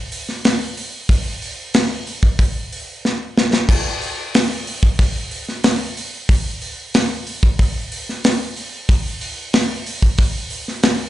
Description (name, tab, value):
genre	metal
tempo	92 BPM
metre	4/4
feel	straight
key	none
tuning	none
part	modern studio drum kit	drums	0.1-11.0 s	crash cymbal, hi-hat, kick drum, snare drum	-17 LUFS	equal	none
room	light reverb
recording	live gig heard through the venue's PA, club reverb, nothing above 10.8 kHz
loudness	-17 LUFS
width	side -14 dB against mid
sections	0.0-11.1 A section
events	drum fill 3.0-3.7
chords	none